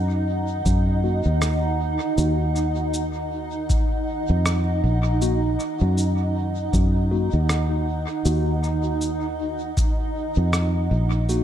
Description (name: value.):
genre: ambient dub.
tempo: 79 BPM.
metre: 4/4.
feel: swing 58% on 16ths.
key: Eb minor.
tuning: A4 = 440 Hz.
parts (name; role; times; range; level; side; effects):
granular cloud pad; sustained chords; 0.0-11.4 s; Eb4 to Bb5; -26 LUFS; right 2 dB; built-in reverb.
fingered electric bass; bass; 0.0-11.4 s; Bb1 to Gb2; -22 LUFS; equal; tube saturation.
electronic kick drum; drums; 0.7-9.9 s; none; -22 LUFS; equal; studio ambience.
electronic shaker and rim click; drums; 0.7-11.4 s; none; -31 LUFS; equal; studio ambience, dub echo.
mellow tine electric piano; stabs; 1.0-11.4 s; Bb3 to Gb4; -31 LUFS; left 3 dB; medium stereo tremolo, low-pass filter, dub echo.
room: light reverb, digital ambience.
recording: dark, warm production.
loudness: -20 LUFS.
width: side -10 dB against mid.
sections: 0.0-11.4 A section.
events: filter sweep on tine electric piano 0.0-11.4.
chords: 0.0 Ebm.